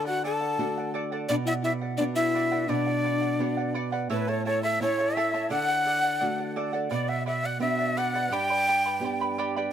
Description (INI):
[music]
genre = andean folk, Andean ensemble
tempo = 85 BPM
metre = 2/4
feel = straight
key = B minor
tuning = A4 = 441 Hz
[part]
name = breathy bright quena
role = melody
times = 0.0-9.4 s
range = B4 to A5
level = -27 LUFS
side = equal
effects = none
[part]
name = breathy reedy pan flute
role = second line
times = 0.0-9.4 s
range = D4 to G5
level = -32 LUFS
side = left 5 dB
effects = none
[part]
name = charango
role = accompaniment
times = 0.0-9.7 s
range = E4 to B5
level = -33 LUFS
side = right 4 dB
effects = none
[part]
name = nylon-string guitar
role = accompaniment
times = 0.0-9.7 s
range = G2 to G4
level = -31 LUFS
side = right 2 dB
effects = none
[sound]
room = light reverb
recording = none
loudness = -24 LUFS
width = side -9 dB against mid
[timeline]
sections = 0.0-4.1 A section; 4.1-9.7 A section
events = none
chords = 0.0 D; 1.3 Bm; 4.1 A; 5.5 D; 6.9 Bm; 8.3 G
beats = 0.59 | 1.30 2.00 | 2.70 3.40 | 4.11 4.81 | 5.51 6.21 | 6.92 7.62 | 8.32 9.03